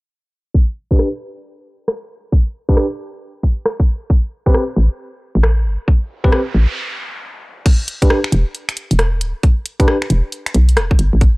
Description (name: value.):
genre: UK garage, two-step garage.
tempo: 135 BPM.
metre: 4/4.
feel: swing 64% on 16ths.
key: unclear.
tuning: A4 = 441 Hz.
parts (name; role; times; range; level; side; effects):
electronic kick drum; drums; 0.5-11.3 s; none; -12 LUFS; equal; none.
tine electric piano; stabs; 0.9-10.0 s; C4 to B4; -20 LUFS; equal; medium stereo tremolo, low-pass filter, tape echo.
garage drum kit; drums; 1.0-11.3 s; crash cymbal, finger snaps, hi-hat, rim click; -20 LUFS; equal; none.
hollow knocking FM bass; bass; 4.8-11.4 s; D1 to B1; -13 LUFS; equal; none.
noise sweep; sound effects; 6.4-7.7 s; none; -29 LUFS; right 2 dB; none.
room: little or no reverb.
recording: dry, gritty hardware recording, cassette tape, low-pass filter.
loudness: -14 LUFS.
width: side -25 dB against mid.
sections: 0.5-7.7 A section; 7.7-11.4 B section.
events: filter sweep on tine electric piano 0.5-7.7, 7.7-11.4; filter sweep 0.5-7.7; noise sweep 6.4-7.7; break 6.8-7.7.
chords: 0.5 Dsus4; 4.1 Am9; 7.4 N.C.; 7.7 Em7.